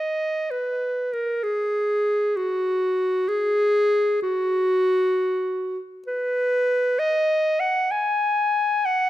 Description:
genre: classical, free, expressive piece for unaccompanied clarinet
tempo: 65 BPM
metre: 4/4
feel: rubato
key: unclear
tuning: A4 = 440 Hz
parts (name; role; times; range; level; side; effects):
- warm clarinet; solo; 0.0-9.1 s; F#4 to G#5; -20 LUFS; equal; none
room: moderate recital hall reverb, RT60 1.5 s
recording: close, detailed microphones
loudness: -20 LUFS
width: side -14 dB against mid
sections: 0.0-9.1 A section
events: none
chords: none

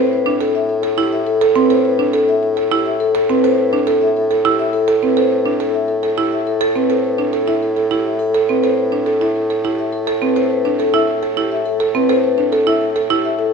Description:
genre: classical, minimalist pattern music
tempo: 104 BPM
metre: 3/4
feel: straight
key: A minor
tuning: A4 = 440 Hz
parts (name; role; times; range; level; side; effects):
- vibraphone with soft mallets; melody; 0.0-13.5 s; G4 to E5; -18 LUFS; left 8 dB; none
- buzzing marimba with medium mallets; arpeggios; 0.0-13.3 s; C4 to A4; -18 LUFS; right 9 dB; none
- warm bassoon; bass; 0.0-13.5 s; A2; -22 LUFS; left 1 dB; none
room: moderate recital hall reverb, RT60 1.2 s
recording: none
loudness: -14 LUFS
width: side -5 dB against mid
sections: 0.0-13.5 A section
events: none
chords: 0.0 Asus2

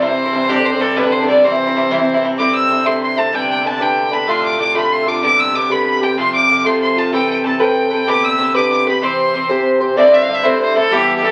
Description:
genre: celtic folk, Celtic jig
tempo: 126 BPM (dotted quarters)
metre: 6/8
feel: straight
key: C major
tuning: A4 = 442 Hz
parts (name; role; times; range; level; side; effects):
- rich fiddle; melody; 0.0-11.3 s; G4 to E6; -18 LUFS; equal; none
- Irish bouzouki; accompaniment; 0.0-11.3 s; G2 to C5; -19 LUFS; equal; none
- hand-pumped harmonium; drone; 0.0-10.0 s; C3; -26 LUFS; equal; none
- accordion; second line; 2.4-11.3 s; G4 to E6; -24 LUFS; equal; none
room: wet club reverb, RT60 0.7 s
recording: very old 78 rpm record, vinyl crackle, nothing above 10.8 kHz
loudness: -15 LUFS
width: mono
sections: 0.0-2.4 A section; 2.4-10.0 B section; 10.0-11.3 B section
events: none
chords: 0.5 Gsus4; 1.0 G; 1.4 C; 2.4 Cadd9; 3.3 G; 4.3 Dm; 5.2 G; 6.2 F; 7.1 Amadd9; 8.1 G; 9.0 C; 10.0 Cadd9

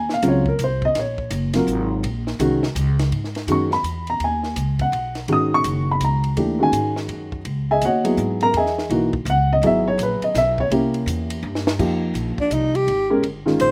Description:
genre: modal jazz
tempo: 166 BPM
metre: 3/4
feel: swing 64% on 8ths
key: G# minor from 3.1 s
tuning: A4 = 440 Hz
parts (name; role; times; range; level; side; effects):
- dark upright piano; accompaniment; 0.0-13.7 s; C3 to D#6; -22 LUFS; equal; none
- upright bass; bass; 0.0-13.7 s; Gb1 to G#2; -26 LUFS; equal; none
- compact cocktail drum kit; drums; 0.1-13.7 s; crash cymbal, hi-hat, kick drum, ride cymbal, snare drum; -33 LUFS; equal; none
- breathy alto saxophone; melody; 12.4-13.7 s; D4 to C5; -21 LUFS; equal; none
room: little or no reverb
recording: recorded outdoors, with no room sound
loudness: -21 LUFS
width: mono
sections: 0.0-3.1 A section; 3.1-11.8 A section; 11.8-13.7 A section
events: drum fill 11.4-11.8; alto saxophone solo 11.8-13.7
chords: 0.0 Ebm9; 3.1 G#m11; 7.5 C#m11; 10.7 C7b9; 11.8 Fm9

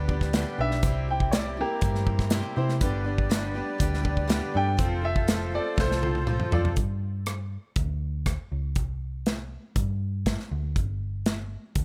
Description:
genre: folk rock and heartland rock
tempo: 121 BPM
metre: 4/4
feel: straight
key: G mixolydian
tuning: A4 = 440 Hz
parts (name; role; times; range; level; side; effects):
- picked steel-string acoustic guitar; accompaniment; 0.0-6.8 s; G2 to A4; -36 LUFS; equal; none
- accordion; sustained chords; 0.0-6.8 s; F3 to D5; -39 LUFS; equal; light tremolo tuning
- hollow-body short-scale picked electric bass; bass; 0.0-11.8 s; F1 to C3; -31 LUFS; equal; none
- natural country drum kit; drums; 0.1-11.8 s; hi-hat, kick drum, rim click, snare drum, toms; -30 LUFS; equal; none
- warm concert grand piano; melody; 0.6-6.8 s; Bb3 to G5; -33 LUFS; equal; slapback echo
- clear upright piano; accompaniment; 0.6-6.7 s; D4 to D5; -38 LUFS; equal; none
room: little or no reverb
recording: none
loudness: -27 LUFS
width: mono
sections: 0.0-6.8 A section; 6.8-11.8 B section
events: grand piano solo 0.0-6.8; drum fill 5.8-6.8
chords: 0.0 G; 0.8 C; 2.8 G; 4.8 F; 6.8 G5; 8.8 C5; 10.8 G5

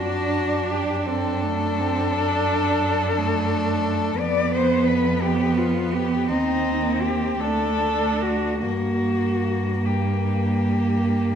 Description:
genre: classical, lyrical piece for cello ensemble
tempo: 48-59 BPM (dotted quarters)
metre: 12/8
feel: rubato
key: G minor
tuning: A4 = 441 Hz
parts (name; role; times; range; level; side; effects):
- rich cello; melody; 0.0-11.4 s; Eb4 to D5; -25 LUFS; left 5 dB; none
- rich cello; second line; 0.0-11.4 s; A3 to D4; -27 LUFS; right 7 dB; none
- warm cello; accompaniment; 0.0-11.4 s; A3 to D4; -25 LUFS; equal; none
- warm cello; bass; 0.0-11.4 s; D2 to G2; -26 LUFS; right 2 dB; none
room: moderate recital hall reverb, RT60 1.7 s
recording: none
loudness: -20 LUFS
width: side -8 dB against mid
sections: 0.0-11.4 A section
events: none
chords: 0.0 D/F#; 4.2 G7/F; 6.3 Cm/Eb; 7.4 D5; 8.6 Gm

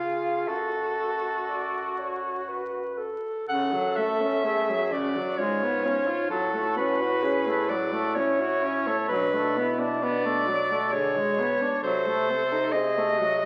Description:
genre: classical, lyrical piece for single-reed quartet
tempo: 59-67 BPM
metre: 3/4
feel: rubato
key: F# minor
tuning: A4 = 439 Hz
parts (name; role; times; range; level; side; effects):
- mellow soprano saxophone; melody; 0.0-13.5 s; A4 to F#5; -29 LUFS; equal; none
- warm alto saxophone; second line; 0.0-13.5 s; D4 to D5; -35 LUFS; equal; none
- mellow tenor saxophone; accompaniment; 0.0-13.4 s; C#3 to F#4; -31 LUFS; equal; none
- mellow bass clarinet; bass; 0.0-13.5 s; F#2 to C#3; -38 LUFS; equal; none
room: wet recital hall reverb, RT60 1.5 s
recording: very old 78 rpm record, vinyl crackle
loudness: -26 LUFS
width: mono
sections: 0.0-3.5 A section; 3.5-13.5 B section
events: none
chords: 0.5 F#m; 5.4 C#7/G#; 6.3 F#m/A; 9.1 Bm7; 10.9 G#dim/B; 11.8 Cdim7

